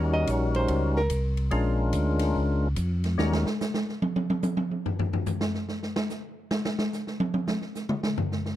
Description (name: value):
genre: soul jazz organ trio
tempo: 144 BPM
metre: 4/4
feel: swing 65% on 8ths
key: unclear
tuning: A4 = 444 Hz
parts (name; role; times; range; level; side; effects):
- percussive tonewheel organ; melody; 0.0-3.5 s; G3 to Bb4; -26 LUFS; left 2 dB; slow rotary speaker, overdrive
- tonewheel organ; bass; 0.0-3.5 s; Bb1 to F2; -26 LUFS; equal; overdrive, chorus vibrato
- hollow-body jazz guitar; accompaniment; 0.1-1.5 s; Bb4 to Eb5; -30 LUFS; right 2 dB; none
- swinging big-band drum kit; drums; 0.3-8.6 s; hi-hat, kick drum, ride cymbal, snare drum, toms; -28 LUFS; equal; none
room: light reverb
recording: dry, close 1970s-style studio recording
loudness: -25 LUFS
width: side -13 dB against mid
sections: 0.0-8.6 A section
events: hollow-body jazz guitar solo 0.0-8.6; drum solo 3.2-8.6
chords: 0.0 Eb7#9; 1.5 Bb7#9; 3.2 N.C.